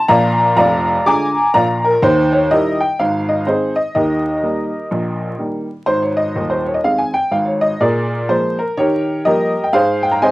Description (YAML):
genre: jazz, stride piano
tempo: 124 BPM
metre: 4/4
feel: swing 61% on 8ths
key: Ab major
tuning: A4 = 440 Hz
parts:
  - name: clear upright piano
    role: solo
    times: 0.0-10.3 s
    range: Eb1 to D6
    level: -14 LUFS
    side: equal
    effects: cassette tape
room: moderate small room reverb, RT60 0.6 s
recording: home recording on cassette, vinyl crackle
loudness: -14 LUFS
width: side -18 dB against mid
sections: 0.0-5.9 A section; 5.9-10.3 B section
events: none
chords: 0.1 Bb7; 2.0 Eb; 3.0 Ab; 3.9 Eb; 5.9 Ab; 7.8 Bb7; 8.8 Eb9; 9.7 Ab